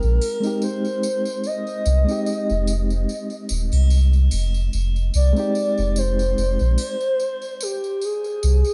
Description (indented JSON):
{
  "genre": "trip hop",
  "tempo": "73 BPM",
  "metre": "4/4",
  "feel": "swing 55% on 16ths",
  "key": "F dorian",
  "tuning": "A4 = 441 Hz",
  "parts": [
    { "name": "pure breathy sine lead", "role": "melody", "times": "0.0-8.7 s", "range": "G4 to Eb5", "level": "-27 LUFS", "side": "equal", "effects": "subtle chorus, dub echo" },
    { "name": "reed electric piano", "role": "accompaniment", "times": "0.0-7.0 s", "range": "Ab3 to G5", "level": "-29 LUFS", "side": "equal", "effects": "fast tremolo, low-pass filter, tape echo" },
    { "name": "warm sub bass", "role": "bass", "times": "0.0-8.6 s", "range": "Eb1 to C2", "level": "-20 LUFS", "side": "equal", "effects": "none" },
    { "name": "tambourine and triangle", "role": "percussion", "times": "0.0-8.7 s", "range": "none", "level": "-37 LUFS", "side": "equal", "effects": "none" }
  ],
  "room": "little or no reverb",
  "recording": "nothing above 11.0 kHz",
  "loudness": "-21 LUFS",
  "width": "mono",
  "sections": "0.0-8.7 A section",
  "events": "none",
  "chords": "0.0 Fm7"
}